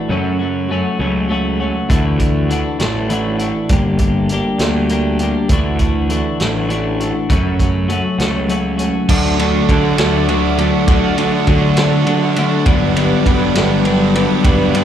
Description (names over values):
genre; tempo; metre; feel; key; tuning
indie rock; 67 BPM (dotted quarters); 6/8; straight; D major; A4 = 439 Hz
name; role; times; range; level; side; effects
twelve-string electric guitar; riff; 0.0-14.8 s; F#2 to G4; -17 LUFS; left 3 dB; none
fuzz picked electric bass; bass; 0.1-14.8 s; G1 to D3; -19 LUFS; right 1 dB; overdrive
vintage drum kit; drums; 1.9-14.8 s; crash cymbal, hi-hat, kick drum, ride cymbal, snare drum; -18 LUFS; right 1 dB; none
string machine, violins; sustained chords; 9.1-14.8 s; A4 to D6; -27 LUFS; right 3 dB; ensemble chorus
overdriven electric guitar; riff; 9.1-14.8 s; G2 to G4; -18 LUFS; right 12 dB; wide subtle chorus, slapback echo
room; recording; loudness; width
studio reverb; live gig heard through the venue's PA, club reverb; -13 LUFS; side -10 dB against mid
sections
0.0-9.1 A section; 9.1-14.8 B section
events
none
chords
0.1 F#m; 1.9 Dadd9; 3.7 Gm; 5.5 Dadd9; 7.3 F#m; 9.1 D; 12.7 Gmaj7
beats
| 0.10 1.00 | 1.90 2.80 | 3.70 4.60 | 5.50 6.40 | 7.29 8.19 | 9.09 9.98 | 10.87 11.77 | 12.66 13.55 | 14.44